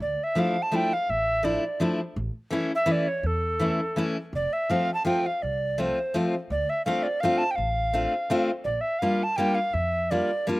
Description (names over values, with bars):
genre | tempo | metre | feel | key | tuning
musette waltz | 167 BPM | 3/4 | straight | D minor | A4 = 441 Hz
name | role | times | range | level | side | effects
mellow tenor recorder | melody | 0.0-10.5 s | A4 to A5 | -26 LUFS | right 1 dB | none
upright bass | bass | 0.0-10.2 s | F1 to F2 | -31 LUFS | equal | none
picked steel-string acoustic guitar | accompaniment | 0.4-10.6 s | E3 to F4 | -26 LUFS | left 1 dB | slapback echo
room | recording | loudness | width
little or no reverb | recorded outdoors, with no room sound | -23 LUFS | side -20 dB against mid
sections
0.0-10.6 A section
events
none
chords
0.0 Dmadd9; 2.2 A; 4.3 F; 6.5 Dm7; 8.7 Bb6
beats
| 0.00 0.36 0.73 | 1.09 1.45 1.80 | 2.16 2.52 2.88 | 3.24 3.60 3.97 | 4.33 4.70 5.06 | 5.43 5.79 6.15 | 6.51 6.87 7.22 | 7.58 7.94 8.30 | 8.67 9.03 9.39 | 9.75 10.11 10.47